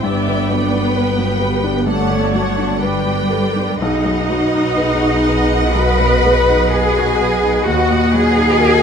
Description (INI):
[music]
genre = cinematic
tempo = 63 BPM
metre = 4/4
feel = rubato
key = B major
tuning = A4 = 440 Hz
[part]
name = rich studio violin section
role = melody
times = 0.0-8.8 s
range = F#5 to G5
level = -26 LUFS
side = equal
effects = none
[part]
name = rich studio violin section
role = second line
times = 0.0-8.8 s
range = G4 to B5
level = -24 LUFS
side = equal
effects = none
[part]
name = felt-muted upright piano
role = accompaniment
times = 0.0-8.8 s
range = B1 to B4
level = -21 LUFS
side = left 4 dB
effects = none
[part]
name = rich studio viola section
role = accompaniment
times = 0.0-8.8 s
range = A#4 to E5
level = -23 LUFS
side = right 3 dB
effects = none
[part]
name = mellow French horn section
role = sustained chords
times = 0.0-8.8 s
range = D4 to B4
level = -23 LUFS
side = left 5 dB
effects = none
[part]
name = rich studio cello section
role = bass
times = 0.0-8.8 s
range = G3 to B4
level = -18 LUFS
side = equal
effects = none
[part]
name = rich studio double bass section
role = bass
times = 0.0-8.8 s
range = G1 to D#2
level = -20 LUFS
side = right 2 dB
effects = none
[sound]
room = moderate recital hall reverb, RT60 1.4 s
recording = none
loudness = -13 LUFS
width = side -7 dB against mid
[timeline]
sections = 0.0-8.8 A section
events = none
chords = 0.0 Gmaj7; 3.8 B; 7.7 D#m